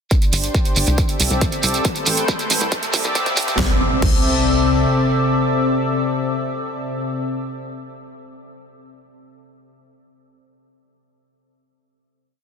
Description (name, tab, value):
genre	uplifting trance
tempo	138 BPM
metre	4/4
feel	straight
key	C major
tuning	A4 = 440 Hz
part	lush unison pad	sustained chords	0.1-7.2 s	C3 to G5	-20 LUFS	left 2 dB	chorus, sidechain pumping
part	big-room dance drum kit	drums	0.1-4.2 s	crash cymbal, hi-hat, snare drum	-24 LUFS	right 3 dB	sidechain pumping on hats, sidechain pumping on cymbals
part	electronic kick drum	drums	0.1-4.2 s	none	-20 LUFS	equal	none
part	shekere	percussion	0.1-3.6 s	none	-24 LUFS	right 2 dB	none
part	riser and impact	sound effects	1.5-7.3 s	none	-27 LUFS	equal	none
part	tight sequencer bass	bass	0.3-4.9 s	G1 to C2	-22 LUFS	equal	sidechain pumping
room	light reverb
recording	dense, heavily limited modern master, high-pass filter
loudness	-16 LUFS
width	side -6 dB against mid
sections	0.1-3.6 build; 3.6-7.1 final chord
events	build-up 0.1-3.6; filter sweep 0.1-3.6; riser 1.5-3.6; drum fill 1.9-3.6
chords	0.1 Gsus4; 1.0 C6; 1.9 Am7; 2.7 C6